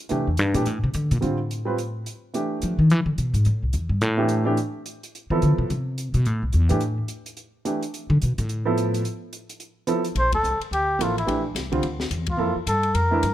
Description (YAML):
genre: modal jazz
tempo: 215 BPM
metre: 4/4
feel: swing 60% on 8ths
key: F lydian, Bb lydian from 10.2 s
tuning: A4 = 442 Hz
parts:
  - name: clear upright piano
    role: accompaniment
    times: 0.1-13.2 s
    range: D3 to B4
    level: -26 LUFS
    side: right 2 dB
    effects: none
  - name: upright bass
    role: bass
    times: 0.1-13.3 s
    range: A1 to F3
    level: -22 LUFS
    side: equal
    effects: none
  - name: compact cocktail drum kit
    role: drums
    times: 0.1-13.3 s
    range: hi-hat, kick drum, ride cymbal, snare drum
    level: -35 LUFS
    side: left 2 dB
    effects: none
  - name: trumpet with cup mute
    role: melody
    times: 10.2-13.3 s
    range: E4 to C5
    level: -23 LUFS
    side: equal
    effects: none
room: light reverb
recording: close, detailed microphones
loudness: -21 LUFS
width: side -12 dB against mid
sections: 0.0-1.2 A section; 1.2-10.2 A section; 10.2-13.3 B section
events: upright bass solo 0.0-10.2; band accent 10.3, 12.3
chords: 0.1 C7; 1.2 Fmaj9; 10.2 Bbmaj9#11